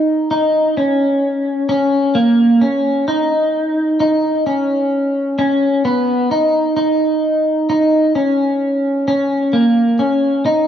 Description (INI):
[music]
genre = dream pop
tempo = 65 BPM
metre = 4/4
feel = straight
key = unclear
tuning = A4 = 440 Hz
[part]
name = electric guitar at the edge of break-up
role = solo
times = 0.0-10.7 s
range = Bb3 to Eb4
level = -13 LUFS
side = equal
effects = analog chorus, tape echo
[sound]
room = wet recital hall reverb, RT60 1.6 s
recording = dark, warm production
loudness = -13 LUFS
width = side -9 dB against mid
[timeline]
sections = 0.0-10.5 A section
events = none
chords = none